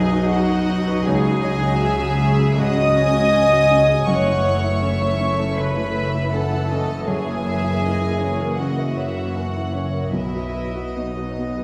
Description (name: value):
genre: cinematic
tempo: 80 BPM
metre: 4/4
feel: rubato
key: F# dorian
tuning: A4 = 440 Hz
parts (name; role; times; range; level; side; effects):
- warm symphonic violin section; melody; 0.0-11.6 s; C#5 to G#5; -33 LUFS; equal; none
- warm studio violin section; second line; 0.0-11.6 s; D#5 to D#6; -33 LUFS; equal; none
- clear grand piano; accompaniment; 0.0-11.6 s; B1 to D#5; -28 LUFS; equal; none
- dark symphonic viola section; accompaniment; 0.0-11.6 s; E3 to D#4; -30 LUFS; equal; none
- concert harp; arpeggios; 0.0-11.6 s; F#2 to B5; -28 LUFS; equal; none
- dark symphonic double bass section; bass; 0.0-11.6 s; F#1 to C#2; -27 LUFS; equal; none
- rich symphonic cello section; bass; 0.0-11.6 s; D#4 to D#5; -25 LUFS; equal; none
room: wet scoring stage reverb, RT60 2.0 s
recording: heard from further back in the room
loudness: -20 LUFS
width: mono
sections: 0.0-11.6 A section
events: none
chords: 0.0 B; 1.1 C#sus4; 4.1 F#m7; 7.1 F#7; 10.2 B